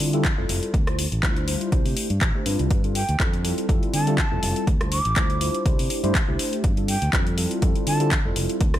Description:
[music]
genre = filtered disco house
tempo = 122 BPM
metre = 4/4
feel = swing 55% on 16ths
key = unclear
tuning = A4 = 440 Hz
[part]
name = mellow tine electric piano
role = accompaniment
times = 0.0-8.8 s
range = G3 to C5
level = -27 LUFS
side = equal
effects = phaser, vintage 12-bit sampler grit, sidechain pumping, low-pass filter
[part]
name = fingered electric bass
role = bass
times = 0.0-8.8 s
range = F1 to D3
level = -26 LUFS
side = equal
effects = sidechain pumping, low-pass filter
[part]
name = house drum kit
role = drums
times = 0.0-8.8 s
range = handclaps, hi-hat, rim click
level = -28 LUFS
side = left 1 dB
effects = sidechain pumping on hats, studio ambience
[part]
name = electronic kick drum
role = drums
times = 0.2-8.7 s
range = none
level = -23 LUFS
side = equal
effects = studio ambience
[part]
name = breathy jazz flute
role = melody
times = 3.0-8.1 s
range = G5 to D6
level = -29 LUFS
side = right 2 dB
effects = vintage 12-bit sampler grit, sidechain pumping, low-pass filter
[sound]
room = digital ambience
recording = none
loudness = -20 LUFS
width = side -12 dB against mid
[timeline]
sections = 0.0-8.8 A section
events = filter sweep 0.0-8.8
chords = 0.0 Fmaj9; 0.7 Dm11; 1.7 C69; 2.7 G9sus4; 3.4 Fmaj9; 4.7 Dm11; 5.7 C69; 6.6 G9sus4; 7.4 Fmaj9

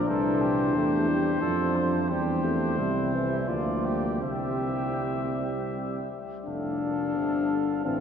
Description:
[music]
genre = classical, brass quintet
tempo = 79-90 BPM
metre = 3/4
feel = rubato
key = F major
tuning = A4 = 441 Hz
[part]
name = mellow trumpet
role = melody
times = 0.0-8.0 s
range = C5 to F5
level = -34 LUFS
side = left 5 dB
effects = none
[part]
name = mellow trumpet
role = second line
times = 0.0-8.0 s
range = E4 to C5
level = -34 LUFS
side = right 4 dB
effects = none
[part]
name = clear euphonium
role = accompaniment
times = 0.0-8.0 s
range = A2 to A3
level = -33 LUFS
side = right 2 dB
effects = none
[part]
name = mellow French horn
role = accompaniment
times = 0.0-8.0 s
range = Bb3 to D4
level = -29 LUFS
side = left 4 dB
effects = none
[part]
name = dark tuba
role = bass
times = 0.0-8.0 s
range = F1 to F2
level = -31 LUFS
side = right 2 dB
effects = none
[sound]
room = wet cathedral reverb, RT60 5.5 s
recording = dark, warm production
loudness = -24 LUFS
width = side -7 dB against mid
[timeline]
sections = 0.0-6.5 A section; 6.5-8.0 B section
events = none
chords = 0.1 C; 1.4 F; 2.1 C/E; 3.5 Bb/D; 4.2 C; 6.5 F

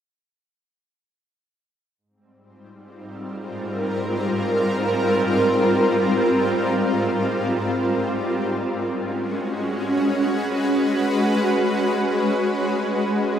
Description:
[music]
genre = ambient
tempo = free time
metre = none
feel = none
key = unclear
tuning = A4 = 441 Hz
[part]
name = shimmering ambient pad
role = solo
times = 3.2-13.4 s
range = Ab2 to Cb5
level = -19 LUFS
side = equal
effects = chorus, built-in reverb, tape echo
[sound]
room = wet plate reverb, RT60 3.6 s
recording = dreamy mix soaked in reverb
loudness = -19 LUFS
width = side -9 dB against mid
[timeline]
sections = 2.0-13.4 A section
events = none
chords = 2.0 Abadd9; 8.0 Db5

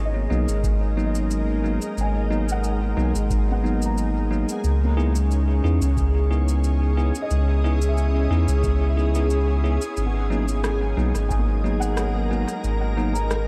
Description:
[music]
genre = ambient dub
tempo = 90 BPM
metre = 4/4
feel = swing 54% on 16ths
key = G# minor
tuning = A4 = 438 Hz
[part]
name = soft additive organ-like pad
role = sustained chords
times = 0.0-13.5 s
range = G#3 to D#6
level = -31 LUFS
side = equal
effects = ensemble chorus, built-in reverb
[part]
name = felt-muted upright piano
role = arpeggios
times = 0.0-13.5 s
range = A#3 to A#5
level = -36 LUFS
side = equal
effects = delay
[part]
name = soft dub sub bass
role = bass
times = 0.0-13.5 s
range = G#1 to E2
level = -24 LUFS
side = equal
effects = none
[part]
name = backwards swelling texture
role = texture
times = 3.0-13.5 s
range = G#4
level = -38 LUFS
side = equal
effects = built-in reverb, ensemble chorus
[part]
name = bell-like tine electric piano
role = stabs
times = 0.3-13.1 s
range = F#3 to G#4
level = -31 LUFS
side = equal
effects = dub echo
[part]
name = electronic shaker and rim click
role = drums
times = 0.5-13.4 s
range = none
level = -37 LUFS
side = equal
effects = dub echo
[part]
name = electronic kick drum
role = drums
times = 0.6-11.4 s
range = none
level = -30 LUFS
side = equal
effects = overdrive
[sound]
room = moderate huge ambient reverb, RT60 8.1 s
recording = dreamy mix soaked in reverb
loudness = -22 LUFS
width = mono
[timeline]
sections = 0.0-13.5 A section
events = none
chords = 0.0 G#m9; 4.6 C#m9; 10.0 G#m9

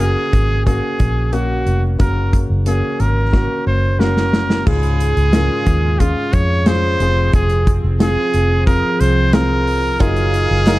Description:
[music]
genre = piano-driven pop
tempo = 90 BPM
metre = 4/4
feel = straight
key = unclear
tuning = A4 = 442 Hz
[part]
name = bright trumpet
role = melody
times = 0.0-10.8 s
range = F4 to Db5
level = -20 LUFS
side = right 1 dB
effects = plate reverb
[part]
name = warm concert grand piano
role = accompaniment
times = 0.0-10.8 s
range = Ab2 to Bb4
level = -22 LUFS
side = left 2 dB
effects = plate reverb
[part]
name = vintage muted fingered electric bass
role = bass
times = 0.0-10.8 s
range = F1 to F2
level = -17 LUFS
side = equal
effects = none
[part]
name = modern studio drum kit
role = drums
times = 0.0-10.8 s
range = crash cymbal, hi-hat, kick drum, snare drum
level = -17 LUFS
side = equal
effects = none
[part]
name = warm studio string section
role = sustained chords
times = 4.7-10.8 s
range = F3 to F5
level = -26 LUFS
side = right 2 dB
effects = none
[part]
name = direct-recorded clean electric guitar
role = riff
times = 10.0-10.8 s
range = Gb3 to Bb4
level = -24 LUFS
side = right 4 dB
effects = none
[part]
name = group handclap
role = percussion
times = 10.7-10.8 s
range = none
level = -33 LUFS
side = left 3 dB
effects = none
[sound]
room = light reverb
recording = dark, warm production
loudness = -13 LUFS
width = side -18 dB against mid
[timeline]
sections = 0.0-4.7 A section; 4.7-10.8 B section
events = drum fill 3.3-4.7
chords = 0.0 Gb; 4.7 Db; 7.0 Fm; 10.0 Ebmadd9/Gb

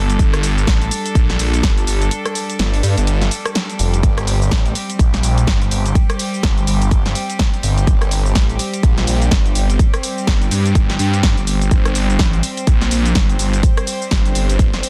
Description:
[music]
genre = bass house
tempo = 125 BPM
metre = 4/4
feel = swing 59% on 16ths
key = G minor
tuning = A4 = 440 Hz
[part]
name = bright chamber string section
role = sustained chords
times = 0.0-14.9 s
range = G3 to C5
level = -28 LUFS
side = equal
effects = sidechain pumping
[part]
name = phased detuned saw bass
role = bass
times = 0.0-14.8 s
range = F1 to G2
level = -19 LUFS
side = equal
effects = phaser, tube saturation, sidechain pumping
[part]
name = house drum kit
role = drums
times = 0.1-14.9 s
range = hi-hat, rim click, shaker, snare drum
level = -24 LUFS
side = equal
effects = small room ambience, soft clipping on snare
[part]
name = electronic kick drum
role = drums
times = 0.2-14.7 s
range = none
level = -17 LUFS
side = equal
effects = small room ambience
[sound]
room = digital ambience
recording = dense, heavily limited modern master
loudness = -16 LUFS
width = mono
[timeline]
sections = 0.0-14.9 A section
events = kick drops out 2.1-4.0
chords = 0.0 G5

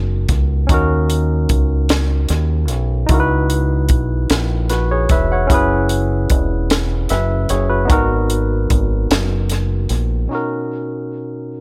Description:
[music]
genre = slow six-eight R&B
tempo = 50 BPM (dotted quarters)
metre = 6/8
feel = straight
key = G# minor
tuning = A4 = 436 Hz
[part]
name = barky tine electric piano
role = accompaniment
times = 0.0-11.6 s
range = B2 to F#5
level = -23 LUFS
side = equal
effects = overdrive
[part]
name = deep dub fingered electric bass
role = bass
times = 0.0-10.3 s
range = E1 to D#2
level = -20 LUFS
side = equal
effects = none
[part]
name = compact cocktail drum kit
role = drums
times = 0.3-10.1 s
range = hi-hat, kick drum, snare drum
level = -20 LUFS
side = equal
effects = tape echo
[sound]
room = little or no reverb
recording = echo-heavy mix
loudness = -17 LUFS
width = mono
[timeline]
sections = 0.0-10.3 A section; 10.3-11.6 B section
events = break 9.1-10.3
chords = 0.0 G#m9 (rootless); 0.7 D#m7; 3.1 C#m11; 5.5 F#7sus4; 7.9 G#m9; 10.3 Bmaj7

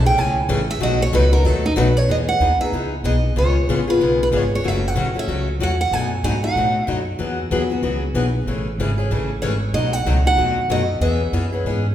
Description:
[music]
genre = acoustic string swing (jazz manouche)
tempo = 188 BPM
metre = 4/4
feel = swing 60% on 8ths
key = E major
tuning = A4 = 439 Hz
[part]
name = picked steel-string acoustic guitar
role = melody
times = 0.0-7.0, 9.4-11.9 s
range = D#4 to G#5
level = -21 LUFS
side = right 2 dB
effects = none
[part]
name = upright bass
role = bass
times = 0.0-11.9 s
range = F#1 to A2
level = -20 LUFS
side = equal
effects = none
[part]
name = picked steel-string acoustic guitar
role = accompaniment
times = 0.1-11.9 s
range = B2 to G#4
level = -22 LUFS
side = left 3 dB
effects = none
[sound]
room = wet recital hall reverb, RT60 1.6 s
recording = recorded in a church or concert hall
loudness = -17 LUFS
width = side -11 dB against mid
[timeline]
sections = 0.0-2.1 A section; 2.1-11.9 B section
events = steel-string acoustic guitar solo 0.0-2.1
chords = 0.0 Amaj7; 0.8 B7; 2.1 Emaj7; 3.4 C#7; 4.6 F#m; 5.9 B7; 7.2 Eadd9; 8.5 Amaj7; 9.7 B7; 11.0 E6

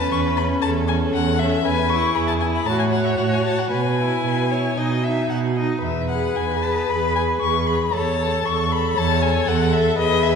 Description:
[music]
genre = quick classical-period movement for string quartet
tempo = 116 BPM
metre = 4/4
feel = rubato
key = E major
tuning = A4 = 441 Hz
[part]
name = warm violin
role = melody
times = 0.0-10.4 s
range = D#5 to C#6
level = -24 LUFS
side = left 6 dB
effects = none
[part]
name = rich violin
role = second line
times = 0.0-10.4 s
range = G#4 to F#5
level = -24 LUFS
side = left 2 dB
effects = none
[part]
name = clear viola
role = accompaniment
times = 0.0-10.4 s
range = C#4 to A4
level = -25 LUFS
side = equal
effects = none
[part]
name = rich cello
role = bass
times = 0.0-10.4 s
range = E2 to B2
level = -22 LUFS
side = right 3 dB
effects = none
[sound]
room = wet concert hall reverb, RT60 2.0 s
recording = heard from further back in the room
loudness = -18 LUFS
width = side -6 dB against mid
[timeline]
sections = 0.0-10.4 A section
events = none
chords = 0.0 A/E; 1.7 E; 2.7 F#m/A; 3.7 E/B; 4.8 B; 5.8 E; 7.9 A/E

